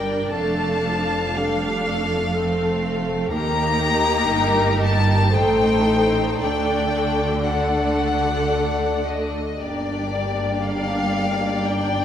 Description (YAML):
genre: classical, slow romantic movement for string orchestra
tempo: 55-62 BPM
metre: 3/4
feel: rubato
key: unclear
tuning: A4 = 440 Hz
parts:
  - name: warm chamber violin section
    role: melody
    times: 0.0-12.0 s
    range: D5 to Bb5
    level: -25 LUFS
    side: left 5 dB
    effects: none
  - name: rich chamber violin section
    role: second line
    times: 0.0-12.0 s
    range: G4 to F5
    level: -24 LUFS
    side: left 2 dB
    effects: none
  - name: rich studio viola section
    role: accompaniment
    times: 0.0-12.0 s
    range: F3 to Eb4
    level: -26 LUFS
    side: right 1 dB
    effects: none
  - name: rich studio double bass section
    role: bass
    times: 0.0-12.0 s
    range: F1 to Eb2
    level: -26 LUFS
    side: right 2 dB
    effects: none
  - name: warm symphonic cello section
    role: bass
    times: 0.0-12.0 s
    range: Eb2 to D3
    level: -27 LUFS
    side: right 2 dB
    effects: none
room: moderate scoring stage reverb, RT60 1.9 s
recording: none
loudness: -18 LUFS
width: side -9 dB against mid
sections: 0.0-12.0 A section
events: none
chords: 0.4 Dm/F; 3.3 Eb; 5.3 Am7b5; 6.4 D; 9.6 Gm